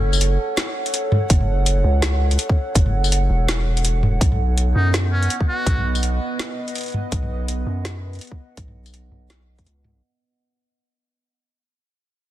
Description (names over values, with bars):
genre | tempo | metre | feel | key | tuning
half-time drum and bass | 165 BPM | 4/4 | swing 57% on 16ths, half-time | unclear | A4 = 440 Hz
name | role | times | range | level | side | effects
dark analog pad | sustained chords | 0.0-10.0 s | B3 to F#5 | -27 LUFS | right 2 dB | chorus, phaser, vintage 12-bit sampler grit, sidechain pumping
long sustained 808-style bass | bass | 0.0-10.0 s | E1 to F#2 | -19 LUFS | equal | none
drum and bass drum kit | drums | 0.1-9.9 s | hi-hat, snare drum, tambourine, toms | -23 LUFS | equal | none
electronic kick drum | drums | 1.3-9.6 s | none | -18 LUFS | equal | none
trumpet with metal mute | melody | 4.8-6.0 s | C#4 to F#4 | -29 LUFS | equal | tape echo
room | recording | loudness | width
digital ambience | dense, heavily limited modern master, lossy compression artefacts | -18 LUFS | side -14 dB against mid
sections
0.0-10.0 A section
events
drop 0.0-10.0; fade-out 4.2-10.0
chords
0.0 F#m; 4.2 B